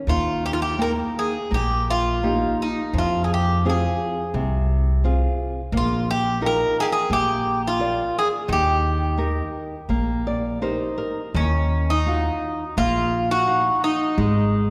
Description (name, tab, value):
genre	fado-style ballad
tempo	85 BPM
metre	4/4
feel	rubato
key	Eb major, Eb minor from 11.3 s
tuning	A4 = 439 Hz
part	nylon-string guitar	accompaniment	0.0-14.7 s	C3 to G5	-28 LUFS	equal	none
part	Greek bouzouki	melody	0.1-14.7 s	Db4 to Bb4	-25 LUFS	equal	none
part	upright bass	bass	0.1-14.7 s	Ab1 to F2	-26 LUFS	equal	none
room	wet concert hall reverb, RT60 2.4 s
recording	recorded in a church or concert hall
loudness	-22 LUFS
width	mono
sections	0.1-11.3 A section; 11.3-14.7 B section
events	nylon-string guitar fill 9.9-11.3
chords	0.1 Eb; 2.9 Fm; 5.7 Bbsus4; 7.1 Bb; 8.5 Eb; 11.3 Ebmadd9; 14.2 Ab5